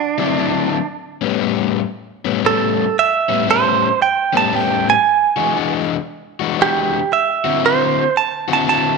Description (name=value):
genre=blues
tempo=116 BPM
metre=4/4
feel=swing 64% on 8ths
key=unclear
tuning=A4 = 440 Hz
part: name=direct-recorded clean electric guitar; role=melody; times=0.0-9.0 s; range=D4 to A5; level=-15 LUFS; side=right 8 dB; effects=spring reverb
part: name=overdriven semi-hollow guitar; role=riff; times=0.2-9.0 s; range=A2 to F#4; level=-19 LUFS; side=left 13 dB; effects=none
room=moderate echo chamber reverb, RT60 1.5 s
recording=1960s-style stereo with parts hard left and right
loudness=-15 LUFS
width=side -4 dB against mid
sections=0.0-9.0 A section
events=clean electric guitar solo 0.0-9.0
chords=0.0 D9; 0.9 A9; 5.0 E9; 7.1 D9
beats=0.37 | 0.89 1.41 1.93 2.45 | 2.97 3.49 4.01 4.53 | 5.04 5.56 6.08 6.60 | 7.12 7.64 8.15 8.67